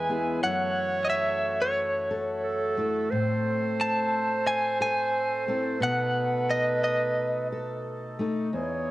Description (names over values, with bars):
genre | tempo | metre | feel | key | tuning
acoustic folk-pop ballad | 89 BPM | 4/4 | straight | unclear | A4 = 440 Hz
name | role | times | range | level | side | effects
direct-recorded clean electric guitar | melody | 0.0-7.5 s | C#5 to A5 | -27 LUFS | equal | tremolo
warm clarinet | second line | 0.0-8.9 s | A4 to C#5 | -29 LUFS | right 3 dB | cassette tape
fingerpicked steel-string acoustic guitar | accompaniment | 0.0-8.9 s | E2 to A4 | -32 LUFS | left 2 dB | cassette tape
hand-pumped harmonium | sustained chords | 0.0-8.9 s | E3 to E5 | -37 LUFS | equal | cassette tape
room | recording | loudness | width
moderate spring reverb, RT60 2.0 s | home recording on cassette | -24 LUFS | side -17 dB against mid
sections
0.0-8.9 A section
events
none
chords
0.4 F#m7; 3.1 Am; 5.8 B7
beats
| 0.43 1.10 1.77 2.44 | 3.11 3.78 4.46 5.13 | 5.80 6.48 7.16 7.84 | 8.53